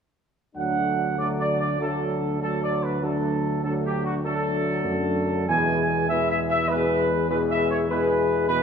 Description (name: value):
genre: classical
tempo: 98 BPM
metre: 4/4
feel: straight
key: D major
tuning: A4 = 440 Hz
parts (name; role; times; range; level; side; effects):
- dark trumpet section; melody; 0.6-8.6 s; F#4 to G#5; -25 LUFS; equal; none
- clear trombone section; sustained chords; 0.6-8.6 s; B2 to F#3; -30 LUFS; right 4 dB; none
- mellow French horn section; sustained chords; 0.6-8.6 s; G#3 to G#4; -29 LUFS; left 6 dB; none
- mellow tuba; bass; 0.6-8.6 s; D2 to F#2; -28 LUFS; right 2 dB; none
room: wet scoring stage reverb, RT60 1.8 s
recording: none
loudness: -22 LUFS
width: side -6 dB against mid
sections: 0.6-8.6 A section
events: none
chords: 0.6 D; 5.5 E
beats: | 0.56 1.18 1.79 2.40 | 3.02 3.63 4.24 4.85 | 5.48 6.09 6.70 7.30 | 7.90 8.50